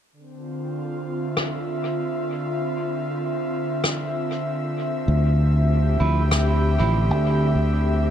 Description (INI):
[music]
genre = ambient dub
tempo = 97 BPM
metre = 4/4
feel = swing 57% on 16ths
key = D minor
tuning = A4 = 440 Hz
[part]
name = airy breathy pad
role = sustained chords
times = 0.1-8.1 s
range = D3 to E5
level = -25 LUFS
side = equal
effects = chorus
[part]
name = rim click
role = drums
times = 1.4-6.5 s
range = none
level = -27 LUFS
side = left 1 dB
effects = low-pass filter on snare, low-pass filter on room, dub echo
[part]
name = fingered electric bass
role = bass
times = 5.1-8.1 s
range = A1 to D2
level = -19 LUFS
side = equal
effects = none
[part]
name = clean electric guitar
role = stabs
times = 6.0-7.0 s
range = F3 to E4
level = -28 LUFS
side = right 5 dB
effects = dub echo
[sound]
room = moderate spring reverb, RT60 2.4 s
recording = none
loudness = -20 LUFS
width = side -9 dB against mid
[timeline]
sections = 0.1-8.1 A section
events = none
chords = 0.1 Dm9